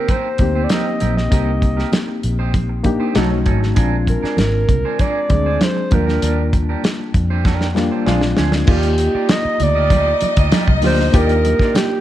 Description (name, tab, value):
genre	lush 1970s-style soul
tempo	98 BPM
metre	4/4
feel	straight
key	Eb major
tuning	A4 = 441 Hz
part	breathy alto saxophone	melody	0.0-12.0 s	G4 to Eb5	-20 LUFS	right 1 dB	none
part	barky reed electric piano	accompaniment	0.0-12.0 s	G3 to Ab4	-21 LUFS	left 3 dB	overdrive, fast tremolo
part	electric guitar at the edge of break-up	riff	0.0-12.0 s	C4 to Eb5	-27 LUFS	right 6 dB	spring reverb
part	warm soul drum kit	drums	0.1-11.9 s	crash cymbal, hi-hat, kick drum, snare drum	-18 LUFS	equal	none
part	congas	percussion	0.1-11.9 s	none	-25 LUFS	right 4 dB	none
part	vintage muted fingered electric bass	bass	0.4-11.6 s	Ab1 to F2	-19 LUFS	equal	none
part	warm studio string section	second line	8.7-12.0 s	Eb4 to Eb5	-25 LUFS	left 3 dB	none
room	little or no reverb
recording	dark, warm production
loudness	-14 LUFS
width	side -13 dB against mid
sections	0.0-8.7 A section; 8.7-12.0 B section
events	drum fill 7.5-8.7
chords	0.0 Abmaj9 (rootless); 3.2 B9; 3.8 Bb7; 5.9 Ebmaj7; 8.1 Bb9; 8.7 Ebmaj9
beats	0.09 0.70 | 1.32 1.93 2.54 3.16 | 3.77 4.39 5.00 5.62 | 6.23 6.84 7.46 8.07 | 8.69 9.30 9.91 10.53 | 11.14 11.76